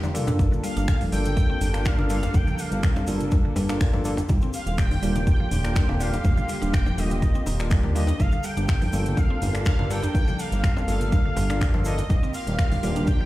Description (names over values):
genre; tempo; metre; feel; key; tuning
afro house; 123 BPM; 4/4; swing 53% on 16ths; G minor; A4 = 440 Hz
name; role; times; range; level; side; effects
muted studio string section; sustained chords; 0.0-13.3 s; D3 to A4; -35 LUFS; right 1 dB; sidechain pumping
mallet-like synth pluck; arpeggios; 0.0-13.3 s; D3 to D4; -32 LUFS; equal; chorus, sidechain pumping, tape echo
house drum kit; drums; 0.0-13.2 s; finger snaps, hi-hat, toms; -34 LUFS; equal; none
cabasa; percussion; 0.0-13.2 s; none; -44 LUFS; left 3 dB; none
djembe; percussion; 0.0-13.2 s; none; -32 LUFS; left 1 dB; none
barky tine electric piano; stabs; 0.1-13.3 s; D3 to Bb4; -33 LUFS; left 2 dB; overdrive, vintage 12-bit sampler grit, sidechain pumping, tape echo
smooth synth bass; bass; 0.4-13.1 s; Eb1 to Eb2; -26 LUFS; equal; tube saturation, sidechain pumping
electronic kick drum; drums; 0.4-13.2 s; none; -21 LUFS; equal; none
congas; percussion; 0.4-13.1 s; none; -34 LUFS; right 1 dB; none
expressive synth lead; melody; 0.6-13.3 s; Eb5 to G5; -33 LUFS; equal; ensemble chorus, tape echo
room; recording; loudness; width
little or no reverb; played on a big sound system in a bare room, stone room reverb; -21 LUFS; side -17 dB against mid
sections
0.0-13.3 A section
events
break 0.0-0.4; drum fill 0.0-0.4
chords
0.4 Gm7; 4.3 Ebmaj7; 8.2 Gm7; 12.1 Ebmaj7